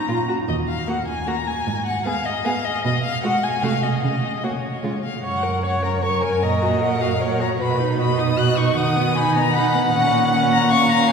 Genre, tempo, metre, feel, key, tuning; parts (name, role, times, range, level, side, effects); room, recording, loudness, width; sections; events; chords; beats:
quick classical-period movement for string quartet; 153 BPM; 3/4; straight; F# major; A4 = 440 Hz
rich violin; melody; 0.0-11.1 s; C#5 to F#6; -23 LUFS; left 4 dB
warm viola; accompaniment; 0.0-11.1 s; G#3 to C#5; -25 LUFS; right 2 dB
warm violin; second line; 0.1-11.1 s; F4 to G#5; -25 LUFS; left 1 dB
warm cello; bass; 0.1-11.1 s; Eb2 to D#3; -23 LUFS; right 3 dB
wet cathedral reverb, RT60 5.4 s; heard from further back in the room; -18 LUFS; side -6 dB against mid
0.0-5.2 A section; 5.2-11.1 B section
0.1 Bb5; 0.5 Ebm; 1.7 Abm; 2.8 G#m7/B; 3.6 Cm; 4.0 N.C.; 4.8 C#; 5.2 F#; 6.4 F#/A#; 7.6 B; 8.8 B/D#; 9.9 F#/A#
0.08 | 0.48 0.88 1.28 | 1.67 2.06 2.45 | 2.85 3.24 3.63 | 4.03 4.43 4.84 | 5.24 5.64 6.03 | 6.43 6.82 7.21 | 7.60 7.99 8.38 | 8.77 9.16 9.55 | 9.94 10.33 10.72 | 11.11